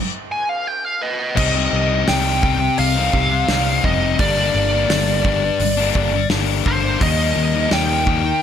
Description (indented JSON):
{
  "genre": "quiet-loud alternative rock",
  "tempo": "85 BPM",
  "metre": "4/4",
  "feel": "straight",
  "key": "C minor",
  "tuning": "A4 = 441 Hz",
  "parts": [
    { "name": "biting lead guitar", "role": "melody", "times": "0.3-8.4 s", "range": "Cb5 to Ab5", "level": "-20 LUFS", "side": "right 1 dB", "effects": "overdrive" },
    { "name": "thick fuzz guitar", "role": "riff", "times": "1.4-8.4 s", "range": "G2 to Eb4", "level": "-20 LUFS", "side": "left 13 dB", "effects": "distortion" },
    { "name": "modern bright picked electric bass", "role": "bass", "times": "1.4-8.3 s", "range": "F1 to Eb2", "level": "-21 LUFS", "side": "right 1 dB", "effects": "none" },
    { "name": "loose indie drum kit", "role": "drums", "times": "1.4-8.2 s", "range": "crash cymbal, hi-hat, kick drum, snare drum", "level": "-23 LUFS", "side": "equal", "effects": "none" }
  ],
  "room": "light reverb, small room ambience",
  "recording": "none",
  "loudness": "-15 LUFS",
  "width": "side -8 dB against mid",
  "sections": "0.0-1.4 A section; 1.4-8.4 B section",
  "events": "lead electric guitar solo 0.0-1.4; stop 0.0-1.4",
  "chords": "0.0 Abm (rootless); 1.4 Cm; 4.2 Gm; 7.0 Eb",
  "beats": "0.67 | 1.38 2.08 2.79 3.49 | 4.20 4.90 5.61 6.31 | 7.01 7.72"
}